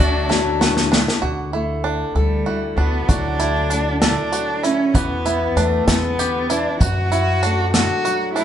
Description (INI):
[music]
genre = indie folk with a building arrangement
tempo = 65 BPM (dotted quarters)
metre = 6/8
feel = straight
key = D major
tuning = A4 = 442 Hz
[part]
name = warm cello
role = melody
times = 0.0-8.4 s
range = G3 to F#4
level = -22 LUFS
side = right 1 dB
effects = none
[part]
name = warm fiddle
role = second line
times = 0.0-0.9 s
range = F#4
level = -27 LUFS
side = left 1 dB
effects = none
[part]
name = picked swing-style acoustic guitar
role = accompaniment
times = 0.0-1.2 s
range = D3 to E4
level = -22 LUFS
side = left 7 dB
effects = none
[part]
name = bluegrass banjo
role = arpeggios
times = 0.0-8.4 s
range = D4 to A4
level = -24 LUFS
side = right 4 dB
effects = none
[part]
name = upright bass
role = bass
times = 0.0-7.9 s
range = D2 to F#2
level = -23 LUFS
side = equal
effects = none
[part]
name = unplugged drum kit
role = drums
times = 0.0-8.4 s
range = hi-hat, kick drum, snare drum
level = -19 LUFS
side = equal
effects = none
[part]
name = fingerpicked steel-string acoustic guitar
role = accompaniment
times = 1.2-8.4 s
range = F#2 to A4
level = -25 LUFS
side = left 4 dB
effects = none
[sound]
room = moderate large studio reverb, RT60 1.4 s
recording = band playing live in one room, nothing above 11.0 kHz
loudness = -16 LUFS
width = side -10 dB against mid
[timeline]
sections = 0.0-1.2 A section; 1.2-3.1 B section; 3.1-8.4 C section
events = drum fill 0.3-1.2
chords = 0.0 Dadd9; 4.9 Em7; 6.8 D/F#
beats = 0.31 | 1.23 2.16 | 3.09 4.01 | 4.94 5.87 | 6.80 7.73